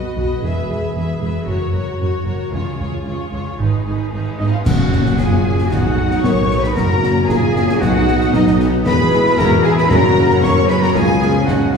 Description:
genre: cinematic, heroic adventure film score.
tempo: 114 BPM.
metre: 4/4.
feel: straight.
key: F# major.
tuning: A4 = 440 Hz.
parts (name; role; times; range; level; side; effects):
clear symphonic violin section; melody; 0.0-11.8 s; B4 to C#6; -28 LUFS; left 4 dB; none.
warm symphonic violin section; second line; 0.0-11.8 s; G#4 to C#6; -29 LUFS; left 3 dB; none.
bright symphonic viola section; accompaniment; 0.0-11.8 s; E#3 to G#4; -23 LUFS; left 1 dB; none.
rich symphonic cello section; bass; 0.2-11.8 s; E2 to C#5; -24 LUFS; right 1 dB; none.
rich symphonic double bass section; bass; 0.2-11.8 s; E1 to F#2; -20 LUFS; right 1 dB; none.
cymbal swell, clash cymbals and concert bass drum; percussion; 0.4-5.7 s; none; -28 LUFS; equal; none.
timpani; percussion; 2.5-5.4, 9.9-10.7 s; F#2 to C#3; -23 LUFS; left 2 dB; none.
clear clarinet; second line; 4.4-11.8 s; D#4 to C#5; -25 LUFS; left 2 dB; none.
flute section; second line; 4.4-11.8 s; D#5 to C#6; -26 LUFS; left 1 dB; none.
warm oboe; second line; 4.4-11.8 s; D#5 to C#6; -27 LUFS; right 1 dB; none.
mellow French horn section; sustained chords; 4.4-11.8 s; B3 to A#4; -21 LUFS; left 1 dB; none.
mellow tuba; bass; 4.7-11.8 s; E1 to C#2; -20 LUFS; right 1 dB; none.
concert snare drum, clash cymbals and concert bass drum; drums; 4.7-11.8 s; none; -22 LUFS; left 1 dB; none.
room: wet scoring stage reverb, RT60 2.0 s.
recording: heard from further back in the room, small room reverb.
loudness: -14 LUFS.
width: side -6 dB against mid.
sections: 0.0-4.7 A section; 4.7-11.8 B section.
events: band accent 4.7-5.2.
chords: 0.4 E; 1.5 F#; 2.5 C#; 3.6 G#m; 4.7 F#; 5.7 B; 6.8 F#; 7.8 B; 8.9 E; 9.9 F#; 11.0 C#.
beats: | 0.43 0.96 1.48 2.00 | 2.53 3.06 3.60 4.13 | 4.66 5.19 5.72 6.24 | 6.77 7.29 7.81 8.34 | 8.86 9.38 9.91 10.43 | 10.95 11.48.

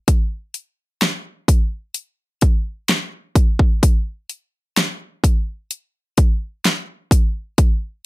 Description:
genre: pop.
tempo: 64 BPM.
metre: 4/4.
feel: straight.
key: none.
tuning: none.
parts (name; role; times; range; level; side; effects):
pop drum kit; drums; 0.1-7.8 s; hi-hat, kick drum, snare drum; -15 LUFS; equal; none.
room: little or no reverb.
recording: none.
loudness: -17 LUFS.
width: side -19 dB against mid.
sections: 0.0-8.1 A section.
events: none.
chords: none.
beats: | 0.09 1.02 1.96 2.90 | 3.84 4.77 5.71 6.65 | 7.59.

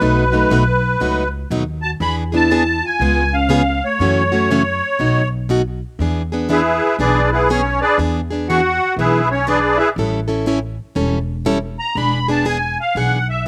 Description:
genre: acoustic string swing (jazz manouche).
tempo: 121 BPM.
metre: 4/4.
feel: swing 64% on 8ths.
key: E mixolydian.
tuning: A4 = 440 Hz.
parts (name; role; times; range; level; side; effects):
musette accordion; melody; 0.0-13.5 s; B3 to B5; -19 LUFS; equal; none.
mellow horn-like synth lead; second line; 0.0-5.3 s; F#3 to G#4; -25 LUFS; equal; chorus.
picked plugged-in steel-string acoustic guitar; accompaniment; 0.0-13.5 s; B2 to A4; -22 LUFS; equal; none.
upright bass; bass; 0.0-13.5 s; E1 to F#2; -24 LUFS; equal; none.
room: little or no reverb.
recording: recorded outdoors, with no room sound.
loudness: -17 LUFS.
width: mono.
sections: 0.0-6.0 A section; 6.0-13.5 B section.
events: accordion solo 6.0-13.5.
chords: 0.0 B7; 2.0 E7; 3.0 C#7; 4.0 F#m7; 5.0 B7; 6.0 E7; 10.0 A7; 12.0 E7.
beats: | 0.02 0.52 1.01 1.51 | 2.01 2.50 3.00 3.50 | 4.00 4.49 4.99 5.49 | 5.99 6.48 6.98 7.48 | 7.98 8.47 8.97 9.47 | 9.97 10.46 10.96 11.46 | 11.96 12.45 12.95 13.45.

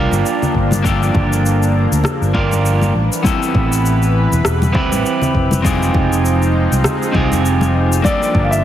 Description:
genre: sunset chillout.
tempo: 100 BPM.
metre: 4/4.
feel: swing 56% on 16ths.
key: G dorian.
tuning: A4 = 440 Hz.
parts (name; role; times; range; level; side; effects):
electric guitar at the edge of break-up; accompaniment; 0.0-8.6 s; Bb3 to B4; -18 LUFS; moving between left 3 dB and right 4 dB; auto-pan, ping-pong delay, shimmer reverb.
lush unison pad; sustained chords; 0.0-8.6 s; E3 to B4; -22 LUFS; equal; chorus, shimmer reverb.
fingered electric bass; bass; 0.0-8.6 s; E1 to D2; -16 LUFS; equal; none.
electronic shaker and rim click; drums; 0.1-8.6 s; none; -23 LUFS; left 1 dB; overdrive.
congas; percussion; 0.1-8.2 s; none; -23 LUFS; left 2 dB; none.
electronic kick drum; drums; 0.5-8.5 s; none; -19 LUFS; equal; overdrive.
dark baby grand piano; melody; 8.0-8.6 s; D5 to F5; -17 LUFS; left 1 dB; shimmer reverb.
room: light reverb, digital ambience.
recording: heavily compressed radio sound.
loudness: -13 LUFS.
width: side -11 dB against mid.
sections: 0.0-8.6 A section.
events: none.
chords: 0.0 Gm9; 2.9 Am9; 5.6 Fm9; 8.0 Gm9.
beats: 0.24 | 0.84 1.44 2.04 2.64 | 3.24 3.84 4.44 5.04 | 5.64 6.24 6.84 7.44 | 8.04.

